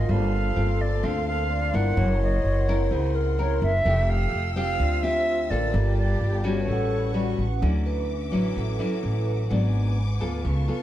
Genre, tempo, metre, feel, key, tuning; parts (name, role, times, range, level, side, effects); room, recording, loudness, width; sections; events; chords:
bossa nova; 128 BPM; 4/4; straight; D major from 7.6 s; A4 = 439 Hz
concert flute; melody; 0.0-7.4 s; Db5 to Gb5; -28 LUFS; right 2 dB
nylon-string guitar; accompaniment; 0.0-10.8 s; G#2 to Bb4; -29 LUFS; left 2 dB
vibraphone with medium mallets; accompaniment; 0.0-9.5 s; Bb3 to E6; -34 LUFS; right 4 dB
warm symphonic string section; sustained chords; 0.0-10.8 s; Bb3 to E6; -39 LUFS; left 4 dB
upright bass; bass; 0.0-10.7 s; F1 to D2; -24 LUFS; equal
breathy wooden-headed alto flute; second line; 0.1-7.6 s; F4 to D5; -32 LUFS; left 2 dB
light reverb; dark, warm production; -22 LUFS; side -12 dB against mid
0.0-7.6 A section; 7.6-10.8 B section
vibraphone solo 7.6-10.8
0.1 Gm11; 2.0 Gb7#11; 3.9 Fmaj9; 4.8 Dm11; 5.7 Gm9; 6.7 A13; 7.6 Dmaj9; 9.5 G#m7b5